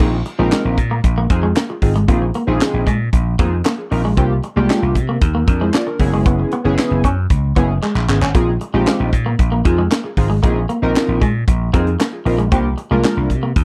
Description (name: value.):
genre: early-eighties boogie funk.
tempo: 115 BPM.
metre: 4/4.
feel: straight.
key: Bb dorian.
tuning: A4 = 438 Hz.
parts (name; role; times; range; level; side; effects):
chorused polysynth; accompaniment; 0.0-13.3 s; Bb3 to D5; -22 LUFS; equal; none.
clean electric guitar; riff; 0.0-13.5 s; Ab3 to Db4; -25 LUFS; equal; lush chorus.
vintage slap bass; bass; 0.0-13.6 s; Gb1 to C3; -20 LUFS; equal; none.
tight funk drum kit; drums; 0.0-13.6 s; crash cymbal, handclaps, hi-hat, kick drum, snare drum; -19 LUFS; equal; none.
room: small room ambience.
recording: dry, close 1970s-style studio recording.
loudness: -16 LUFS.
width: mono.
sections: 0.0-13.6 A section.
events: drum fill 7.8-8.3.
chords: 0.0 Bb9sus4; 4.2 C9sus4; 6.0 Gb9sus4; 8.3 Bb9sus4; 12.5 C9sus4.